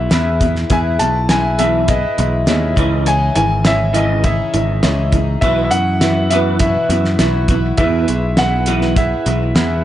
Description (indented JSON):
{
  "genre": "folk rock and heartland rock",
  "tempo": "102 BPM",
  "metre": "4/4",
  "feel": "straight",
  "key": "E major",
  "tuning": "A4 = 440 Hz",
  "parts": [
    { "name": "warm concert grand piano", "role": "melody", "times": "0.0-9.8 s", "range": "D#5 to A5", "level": "-19 LUFS", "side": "equal", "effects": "analog delay" },
    { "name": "picked twelve-string acoustic guitar", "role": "accompaniment", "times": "0.0-9.8 s", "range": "B2 to G#4", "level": "-23 LUFS", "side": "left 4 dB", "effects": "analog delay" },
    { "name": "electric guitar through a small old amp", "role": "riff", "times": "0.0-9.8 s", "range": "E2 to B3", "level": "-21 LUFS", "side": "right 2 dB", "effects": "ensemble chorus, analog delay" },
    { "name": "picked electric bass", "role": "bass", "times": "0.0-9.8 s", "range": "G#1 to F#2", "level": "-18 LUFS", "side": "equal", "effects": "none" },
    { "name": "bright upright piano", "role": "accompaniment", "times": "0.1-9.8 s", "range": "E4 to D#6", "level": "-27 LUFS", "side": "right 5 dB", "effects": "analog delay" },
    { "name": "cloth-damped thuddy drum kit", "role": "drums", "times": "0.1-9.7 s", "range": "hi-hat, kick drum, snare drum", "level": "-19 LUFS", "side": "equal", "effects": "analog delay" }
  ],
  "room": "light reverb, small room ambience",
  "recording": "echo-heavy mix, nothing above 10.8 kHz",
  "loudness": "-13 LUFS",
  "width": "side -12 dB against mid",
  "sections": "0.0-9.8 A section",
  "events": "none",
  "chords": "0.0 E; 2.8 C#madd9; 5.4 Bsus4; 7.8 E",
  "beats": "0.11 | 0.70 1.29 1.88 2.47 | 3.06 3.65 4.24 4.83 | 5.42 6.01 6.61 7.20 | 7.79 8.38 8.97 9.56"
}